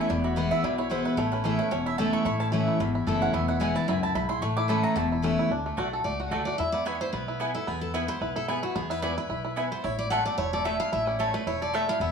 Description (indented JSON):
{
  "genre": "bluegrass",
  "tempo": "222 BPM",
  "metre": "4/4",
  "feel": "swing 54% on 8ths",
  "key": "A major",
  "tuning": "A4 = 440 Hz",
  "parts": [
    { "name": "picked steel-string acoustic guitar", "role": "accompaniment", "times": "0.0-12.1 s", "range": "E2 to F#5", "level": "-28 LUFS", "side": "left 1 dB", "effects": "none" },
    { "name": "bluegrass banjo", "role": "arpeggios", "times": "0.0-12.1 s", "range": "E3 to A4", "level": "-31 LUFS", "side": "right 2 dB", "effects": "none" },
    { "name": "mandolin", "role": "stabs", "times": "0.0-11.8 s", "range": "A3 to D6", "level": "-32 LUFS", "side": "right 1 dB", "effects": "none" },
    { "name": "upright bass", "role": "bass", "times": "0.1-12.1 s", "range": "E1 to E2", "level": "-33 LUFS", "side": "left 1 dB", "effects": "none" }
  ],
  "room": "moderate studio reverb, RT60 0.9 s",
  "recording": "small room ambience",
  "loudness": "-25 LUFS",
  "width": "side -6 dB against mid",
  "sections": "0.0-5.5 A section; 5.5-12.1 A section",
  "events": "mandolin solo 0.0-5.5; steel-string acoustic guitar solo 5.5-12.1",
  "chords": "0.1 E; 1.2 A; 3.3 E; 4.4 A; 5.5 D; 6.6 E; 9.8 A",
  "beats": "| 0.09 0.36 0.63 0.90 | 1.18 1.45 1.72 1.99 | 2.26 2.53 2.80 3.07 | 3.34 3.61 3.88 4.15 | 4.42 4.69 4.96 5.23 | 5.50 5.78 6.05 6.32 | 6.59 6.86 7.13 7.40 | 7.67 7.95 8.22 8.49 | 8.76 9.03 9.30 9.57 | 9.84 10.11 10.38 10.65 | 10.93 11.20 11.47 11.74 | 12.01"
}